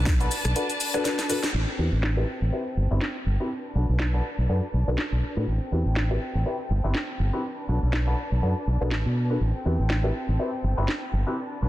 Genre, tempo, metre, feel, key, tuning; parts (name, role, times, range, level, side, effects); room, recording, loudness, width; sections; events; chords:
filtered disco house; 122 BPM; 4/4; swing 56% on 16ths; A dorian; A4 = 436 Hz
rich studio violin section; sustained chords; 0.0-11.7 s; C4 to A5; -35 LUFS; left 1 dB; sidechain pumping, low-pass filter
modern bright fingered electric bass; bass; 0.0-11.7 s; G1 to B2; -23 LUFS; equal; tube saturation, sidechain pumping, low-pass filter
house drum kit; drums; 0.1-11.0 s; cabasa, crash cymbal, hi-hat, rim click, snare drum; -32 LUFS; equal; overdrive, sidechain pumping on hats, low-pass filter on hats, studio ambience, sidechain pumping on perc, low-pass filter on perc, low-pass filter on snare, sidechain pumping on cymbals, low-pass filter on cymbals
dark baby grand piano; accompaniment; 0.2-11.7 s; C4 to B4; -31 LUFS; left 1 dB; phaser, vintage 12-bit sampler grit, sidechain pumping, low-pass filter
light reverb; dense, heavily limited modern master; -23 LUFS; side -15 dB against mid
0.0-1.5 A section; 1.5-11.7 B section
filter sweep 0.0-1.5, 1.5-11.7; break 0.6-1.5; drum fill 1.0-1.5; band accent 1.4
0.0 Bm7; 1.5 Am7; 3.5 Bm7; 5.5 Am7; 7.4 Bm7; 9.4 Am7